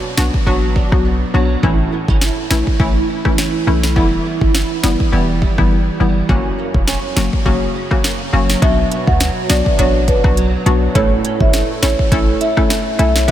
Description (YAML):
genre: dancehall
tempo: 103 BPM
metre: 4/4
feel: swing 56% on 16ths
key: B minor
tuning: A4 = 439 Hz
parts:
  - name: flamenco guitar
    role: arpeggios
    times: 0.0-13.3 s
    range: F#2 to E4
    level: -22 LUFS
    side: right 6 dB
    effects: ensemble chorus, analog delay
  - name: hollow square pluck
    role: accompaniment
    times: 0.2-13.3 s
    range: E3 to A4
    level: -19 LUFS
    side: left 2 dB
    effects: chorus
  - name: warm 808-style bass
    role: bass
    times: 0.2-13.3 s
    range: E1 to D2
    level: -17 LUFS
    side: equal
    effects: none
  - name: afro-pop drum kit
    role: drums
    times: 0.2-13.3 s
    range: hi-hat, kick drum, rim click, snare drum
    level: -18 LUFS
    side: equal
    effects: none
  - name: marimba with medium mallets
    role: melody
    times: 8.6-13.3 s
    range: B4 to F#5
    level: -19 LUFS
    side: equal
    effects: analog delay
room: light reverb, digital ambience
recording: none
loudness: -13 LUFS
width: side -12 dB against mid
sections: 0.0-8.6 A section; 8.6-13.3 B section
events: none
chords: 0.0 Bm; 1.6 A; 4.0 Em; 6.3 F#; 8.6 Bm; 11.0 A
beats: 0.47 1.05 | 1.63 2.22 2.80 3.38 | 3.96 4.55 5.13 5.71 | 6.29 6.88 7.46 8.04 | 8.62 9.21 9.79 10.37 | 10.95 11.54 12.12 12.70 | 13.28